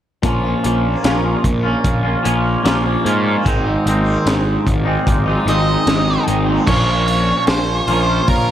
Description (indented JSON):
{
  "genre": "psychedelic rock",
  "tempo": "75 BPM",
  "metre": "4/4",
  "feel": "straight",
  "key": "Bb minor",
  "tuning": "A4 = 440 Hz",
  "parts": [
    { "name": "twangy electric guitar", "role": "riff", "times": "0.2-8.5 s", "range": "Ab2 to F4", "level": "-18 LUFS", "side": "equal", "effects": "phaser, double-tracked left and right" },
    { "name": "fuzz picked electric bass", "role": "bass", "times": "0.2-8.5 s", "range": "Ab1 to Ab2", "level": "-19 LUFS", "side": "equal", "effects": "overdrive" },
    { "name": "tanpura", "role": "drone", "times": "0.2-8.5 s", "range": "Bb2 to Bb3", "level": "-29 LUFS", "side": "equal", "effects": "none" },
    { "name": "crunchy breakbeat drum kit", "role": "drums", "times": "0.2-8.5 s", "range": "crash cymbal, hi-hat, kick drum, snare drum", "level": "-20 LUFS", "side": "equal", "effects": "none" },
    { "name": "octave-fuzz lead guitar", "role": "melody", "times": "5.5-8.5 s", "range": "Bb4 to Eb5", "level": "-19 LUFS", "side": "right 2 dB", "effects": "distortion, analog delay" }
  ],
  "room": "light reverb",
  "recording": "none",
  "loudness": "-14 LUFS",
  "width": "side -11 dB against mid",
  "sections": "0.2-6.7 A section; 6.7-8.5 B section",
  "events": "none",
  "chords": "0.2 Bbm; 3.5 Ab; 6.7 Bbm"
}